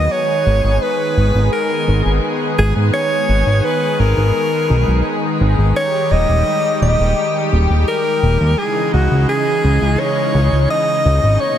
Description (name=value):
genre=synthwave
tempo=85 BPM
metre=4/4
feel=straight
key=G# minor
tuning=A4 = 440 Hz
part: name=warm alto saxophone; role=melody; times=0.0-11.6 s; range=F#4 to D#5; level=-18 LUFS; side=equal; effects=shimmer reverb, tape echo
part: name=lush unison pad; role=sustained chords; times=0.0-11.6 s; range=A#2 to G#4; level=-20 LUFS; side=equal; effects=chorus, shimmer reverb
part: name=fat analog bass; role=bass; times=0.0-11.4 s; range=D#1 to G#2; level=-14 LUFS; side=equal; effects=none
room=moderate lush hall reverb, RT60 2.4 s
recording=dense, heavily limited modern master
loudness=-13 LUFS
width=side -10 dB against mid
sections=0.1-11.6 A section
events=none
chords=0.1 G#madd9; 5.8 D#; 8.6 C#madd9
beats=| 0.11 0.82 1.53 2.23 | 2.94 3.64 4.35 5.05 | 5.76 6.47 7.17 7.88 | 8.58 9.29 10.00 10.70 | 11.41